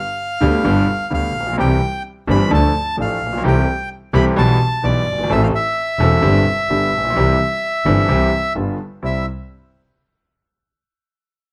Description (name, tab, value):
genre	tango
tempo	129 BPM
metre	4/4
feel	rubato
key	C major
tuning	A4 = 440 Hz
part	bandoneon	melody	0.0-9.3 s	D5 to B5	-22 LUFS	equal	none
part	clear concert grand piano	accompaniment	0.4-9.2 s	E1 to A4	-21 LUFS	equal	none
part	clear double bass	bass	0.4-9.2 s	E1 to D2	-21 LUFS	equal	none
room	little or no reverb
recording	close, detailed microphones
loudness	-17 LUFS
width	mono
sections	0.0-9.0 A section; 9.0-10.9 B section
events	none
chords	0.0 G; 1.6 C; 2.5 Dm; 3.4 Am7/C; 4.4 Em/B; 5.3 Am; 6.2 Gsus4; 6.7 G; 7.2 C; 8.6 G7; 9.0 C